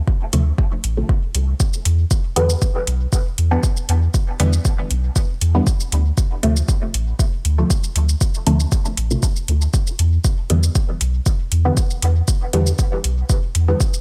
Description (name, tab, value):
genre	dub techno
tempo	118 BPM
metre	4/4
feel	straight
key	E phrygian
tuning	A4 = 444 Hz
part	electronic kick drum	drums	0.1-13.9 s	none	-20 LUFS	equal	overdrive, studio reverb
part	filtered dub chord stab	stabs	0.3-13.8 s	C3 to B3	-25 LUFS	equal	phaser, sidechain pumping, dub echo
part	soft dub sub bass	bass	0.3-13.7 s	A1 to E2	-19 LUFS	equal	sidechain pumping
part	electronic hi-hat and shaker	drums	0.3-14.0 s	none	-28 LUFS	equal	studio reverb
room	little or no reverb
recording	none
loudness	-18 LUFS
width	mono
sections	0.0-14.0 A section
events	none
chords	0.0 Dm7; 1.6 Em7; 5.7 Dm7; 9.7 Em7